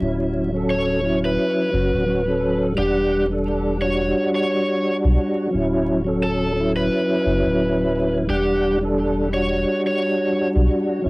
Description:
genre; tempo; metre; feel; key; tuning
trip hop; 87 BPM; 4/4; swing 57% on 16ths; E dorian; A4 = 438 Hz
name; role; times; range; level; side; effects
tonewheel organ; accompaniment; 0.0-11.1 s; F#3 to F#5; -20 LUFS; equal; chorus vibrato, slow rotary speaker, harmonic tremolo, cassette tape
soft dub sub bass; bass; 0.0-11.1 s; D1 to B1; -24 LUFS; equal; none
overdriven slide guitar; melody; 0.7-10.5 s; G4 to C#5; -23 LUFS; equal; vintage 12-bit sampler grit, cassette tape, tape echo
room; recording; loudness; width
light reverb; home recording on cassette, vinyl crackle; -18 LUFS; side -24 dB against mid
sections
0.0-11.1 A section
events
none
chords
0.0 Dmaj7; 2.8 Em7; 5.5 Dmaj7; 8.3 Em7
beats
| 0.01 0.70 1.39 2.08 | 2.77 3.46 4.15 4.84 | 5.53 6.22 6.91 7.60 | 8.29 8.98 9.67 10.36 | 11.04

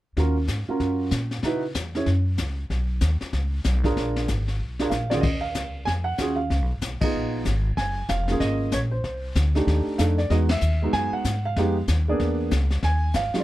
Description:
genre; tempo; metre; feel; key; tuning
jazz piano trio; 190 BPM; 4/4; swing 61% on 8ths; Eb minor; A4 = 439 Hz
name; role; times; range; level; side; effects
warm grand piano; melody; 0.2-13.4 s; Eb3 to Ab5; -25 LUFS; right 2 dB; none
upright bass; bass; 0.2-13.4 s; F1 to Bb2; -24 LUFS; equal; none
vintage brush drum kit; drums; 0.2-13.4 s; brushed snare drum, hi-hat, kick drum, ride cymbal, snare drum; -30 LUFS; left 2 dB; none
room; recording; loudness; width
little or no reverb; dark, warm production; -22 LUFS; side -15 dB against mid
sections
0.2-5.2 A section; 5.2-13.4 B section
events
drum fill 4.6-5.2; band accent 7.0, 10.5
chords
0.2 Ebm9; 1.4 Dbm11; 2.1 Gb5; 2.7 Badd9; 4.0 Bb7; 5.2 Ebm9; 6.5 Db9 (rootless); 7.8 Gbmaj9; 9.0 F13; 10.3 Emaj7; 11.6 Fm7b5; 12.2 E7#11; 12.8 Ebsus4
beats
| 0.17 0.49 0.80 1.12 | 1.44 1.75 2.07 2.39 | 2.70 3.02 3.34 3.65 | 3.97 4.29 4.60 4.92 | 5.24 5.55 5.87 6.19 | 6.50 6.82 7.14 7.46 | 7.77 8.09 8.40 8.72 | 9.04 9.35 9.67 9.99 | 10.30 10.62 10.93 11.25 | 11.57 11.88 12.20 12.51 | 12.83 13.14

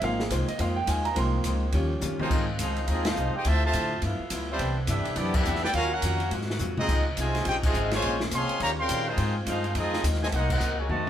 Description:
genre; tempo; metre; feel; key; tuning
jazz, big band swing; 210 BPM; 4/4; swing 62% on 8ths; Ab major; A4 = 440 Hz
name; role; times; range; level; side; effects
vintage hollow-body jazz guitar; accompaniment; 0.0-11.1 s; G2 to C5; -35 LUFS; left 3 dB; none
warm grand piano; accompaniment; 0.0-2.3 s; F3 to C6; -29 LUFS; right 2 dB; none
mellow saxophone section; sustained chords; 0.0-11.1 s; C3 to Gb4; -39 LUFS; equal; none
upright bass; bass; 0.0-11.1 s; Ab1 to Bb2; -29 LUFS; equal; none
open jazz drum kit; drums; 0.0-11.1 s; crash cymbal, hi-hat, kick drum, ride cymbal, snare drum, toms; -31 LUFS; equal; none
clear trumpet section; melody; 2.2-11.1 s; G3 to C6; -29 LUFS; right 1 dB; none
muted trombone section; second line; 2.2-11.1 s; C3 to G4; -34 LUFS; equal; none
room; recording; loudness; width
wet studio reverb, RT60 0.7 s; band playing live in one room; -24 LUFS; side -10 dB against mid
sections
0.0-2.3 A section; 2.3-11.1 B section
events
grand piano solo 0.0-2.3; drum fill 2.0, 6.6, 10.9; band accent 3.0, 5.3, 7.6, 10.5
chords
0.0 Ab6; 1.7 Eb9; 2.3 Ab6; 3.4 Dm9; 4.0 G13; 4.6 Cmaj9; 5.7 Ebm9; 6.3 Ab13; 6.9 Dbmaj9; 8.0 Bbm9; 8.6 Eb13; 9.2 Ab6; 10.3 Cm7b5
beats
| 0.02 0.30 0.59 0.87 | 1.16 1.45 1.73 2.02 | 2.30 2.59 2.88 3.16 | 3.45 3.73 4.02 4.31 | 4.59 4.88 5.17 5.45 | 5.74 6.03 6.31 6.60 | 6.88 7.17 7.46 7.74 | 8.03 8.31 8.60 8.89 | 9.17 9.46 9.75 10.03 | 10.32 10.61 10.89

